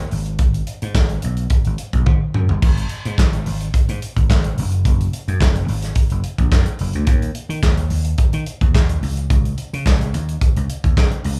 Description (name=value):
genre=disco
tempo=108 BPM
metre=4/4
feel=straight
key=G# minor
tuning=A4 = 438 Hz
part: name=vintage slap bass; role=bass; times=0.0-11.4 s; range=F#1 to D#3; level=-24 LUFS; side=equal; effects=none
part: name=modern studio drum kit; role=drums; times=0.1-11.4 s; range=crash cymbal, handclaps, hi-hat, kick drum, snare drum, toms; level=-20 LUFS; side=equal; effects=none
room=light reverb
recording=band playing live in one room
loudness=-18 LUFS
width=mono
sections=0.0-2.6 A section; 2.6-11.4 A section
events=drum fill 2.1-2.6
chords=none